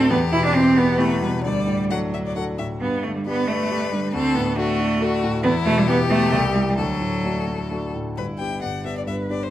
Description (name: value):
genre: quick classical-period movement for piano trio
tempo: 134 BPM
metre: 3/4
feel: straight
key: G major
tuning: A4 = 444 Hz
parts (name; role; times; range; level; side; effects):
- clear violin; melody; 0.0-9.5 s; E4 to G5; -27 LUFS; left 7 dB; none
- clear cello; second line; 0.0-9.5 s; F#3 to B4; -22 LUFS; right 2 dB; none
- warm concert grand piano; accompaniment; 0.0-9.5 s; G1 to A4; -24 LUFS; left 1 dB; none
room: moderate scoring stage reverb, RT60 2.0 s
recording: close, detailed microphones, vinyl crackle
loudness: -19 LUFS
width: side -13 dB against mid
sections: 0.0-8.2 A section; 8.2-9.5 B section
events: none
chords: 0.1 Em; 1.4 D; 2.8 G; 4.1 D; 5.4 Em; 6.3 Am7/C (rootless); 6.8 D; 8.2 G